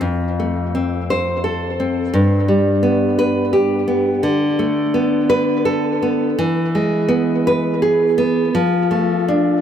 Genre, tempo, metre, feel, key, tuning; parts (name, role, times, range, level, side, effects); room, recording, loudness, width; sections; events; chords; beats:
romantic piece for solo classical guitar; 84 BPM; 3/4; rubato; A4 = 442 Hz
nylon-string guitar; solo; 0.0-9.6 s; F2 to C5; -15 LUFS; equal; tape echo
moderate plate reverb, RT60 3.6 s; dreamy mix soaked in reverb; -15 LUFS; side -9 dB against mid
0.0-9.6 A section
0.0 F; 2.1 G; 4.2 Bm7/D; 6.4 E; 8.5 Dm/F
| 0.03 0.74 1.45 | 2.15 2.85 3.54 | 4.25 4.96 5.67 | 6.39 7.11 7.82 | 8.54 9.27